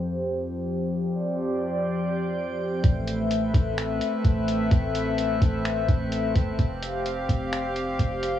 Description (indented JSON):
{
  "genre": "hip hop, atmospheric cloud-rap",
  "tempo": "128 BPM",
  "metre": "4/4",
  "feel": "half-time",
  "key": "unclear",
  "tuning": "A4 = 439 Hz",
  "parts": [
    { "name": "hollow soft pad", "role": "sustained chords", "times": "0.0-8.4 s", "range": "F2 to F5", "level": "-26 LUFS", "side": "left 1 dB", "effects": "chorus, sidechain pumping, plate reverb" },
    { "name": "drifting glass-harmonics texture", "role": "texture", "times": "0.0-8.4 s", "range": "G3 to G5", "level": "-35 LUFS", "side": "equal", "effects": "chorus, built-in reverb" },
    { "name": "clean 808-style bass", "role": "bass", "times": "2.8-8.4 s", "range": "F1 to A1", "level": "-28 LUFS", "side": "equal", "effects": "none" },
    { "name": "lo-fi sampler-style drum kit", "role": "drums", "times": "2.8-8.3 s", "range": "finger snaps, hi-hat, kick drum", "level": "-24 LUFS", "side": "equal", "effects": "cassette tape" }
  ],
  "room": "light reverb",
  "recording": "home recording on cassette, low-pass filter",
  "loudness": "-23 LUFS",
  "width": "side -11 dB against mid",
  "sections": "0.0-2.8 A section; 2.8-8.4 B section",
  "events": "filter sweep 0.0-2.8",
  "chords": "0.0 Fsus2; 2.8 Amadd9; 6.6 Fsus2"
}